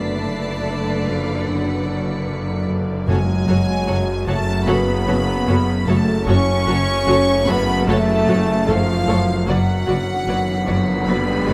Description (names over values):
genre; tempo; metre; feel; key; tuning
cinematic, suspense film score; 75 BPM; 4/4; straight; F# harmonic minor; A4 = 440 Hz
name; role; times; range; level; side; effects
warm studio violin section; melody; 0.0-11.5 s; E#5 to C#6; -29 LUFS; equal; none
dark studio violin section; second line; 0.0-11.5 s; A4 to D5; -32 LUFS; equal; none
warm studio viola section; accompaniment; 0.0-11.5 s; D3 to A4; -28 LUFS; equal; none
warm French horn section; sustained chords; 0.0-11.5 s; E#3 to C#4; -27 LUFS; equal; none
warm trombone section; sustained chords; 0.0-11.5 s; C#3 to B3; -30 LUFS; equal; none
concert harp; riff; 0.0-11.5 s; F#2; -25 LUFS; equal; none
dark studio cello section; bass; 0.0-11.5 s; E#3 to C#4; -28 LUFS; equal; none
dark studio double bass section; bass; 0.0-11.5 s; F#1; -27 LUFS; equal; none
bowed-like drone; drone; 0.0-11.5 s; F#1; -30 LUFS; equal; built-in reverb
rich studio violin section; texture; 0.0-2.6, 9.5-11.5 s; B6 to B#6; -36 LUFS; equal; none
timpani; percussion; 3.1-4.2 s; F#2; -26 LUFS; equal; none
riser; sound effects; 10.1-11.5 s; none; -29 LUFS; equal; none
room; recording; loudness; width
moderate scoring stage reverb, RT60 1.9 s; none; -19 LUFS; mono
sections
0.0-11.5 A section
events
riser 10.2-11.5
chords
0.0 Bm/F#; 3.1 F#madd9; 9.5 Bm/F#